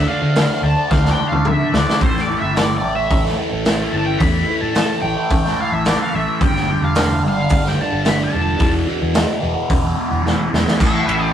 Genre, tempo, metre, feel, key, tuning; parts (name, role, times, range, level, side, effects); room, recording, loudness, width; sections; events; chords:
psychedelic rock; 109 BPM; 4/4; straight; A4 = 439 Hz
octave-fuzz lead guitar; melody; 0.0-11.3 s; C5 to B5; -23 LUFS; equal; wah, distortion
fuzz guitar; riff; 0.0-11.3 s; E2 to B4; -20 LUFS; equal; distortion, phaser
fingered electric bass; bass; 0.0-11.3 s; E1 to D3; -22 LUFS; equal
raw garage drum kit; drums; 0.4-11.2 s; crash cymbal, hi-hat, kick drum, ride cymbal, snare drum, toms; -19 LUFS; equal
moderate studio reverb, RT60 0.6 s; rough rehearsal-room recording; -15 LUFS; side -9 dB against mid
0.0-10.8 A section
lead electric guitar solo 0.0-10.8; drum fill 0.9-2.0, 10.2-10.8
0.0 Dm; 2.0 A5; 6.4 G5; 8.6 E5; 10.8 Asus2